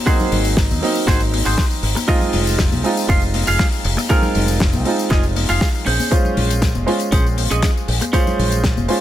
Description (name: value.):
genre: nu-disco, nu disco.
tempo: 119 BPM.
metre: 4/4.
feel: straight.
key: unclear.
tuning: A4 = 440 Hz.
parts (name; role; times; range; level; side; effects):
clear concert grand piano; accompaniment; 0.0-9.0 s; Gb3 to C5; -22 LUFS; right 2 dB; sidechain pumping, ping-pong delay.
clean electric guitar; riff; 0.1-8.6 s; Db4 to F5; -23 LUFS; right 2 dB; lush chorus, ping-pong delay.
electronic kick drum; drums; 0.1-8.7 s; none; -17 LUFS; equal; none.
tambourine and congas; percussion; 0.1-8.9 s; none; -27 LUFS; left 4 dB; none.
fingered electric bass with an envelope filter; bass; 0.3-8.9 s; F1 to Eb2; -20 LUFS; equal; none.
damped 70s drum kit; drums; 0.3-9.0 s; hi-hat, snare drum; -23 LUFS; left 3 dB; none.
room: small room ambience.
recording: none.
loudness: -15 LUFS.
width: side -12 dB against mid.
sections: 0.0-9.0 A section.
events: none.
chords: 0.0 Ab7; 2.1 Fm7; 5.9 Bbm9.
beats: | 0.07 0.57 1.08 1.58 | 2.08 2.59 3.09 3.60 | 4.10 4.61 5.11 5.61 | 6.12 6.62 7.13 7.63 | 8.13 8.64.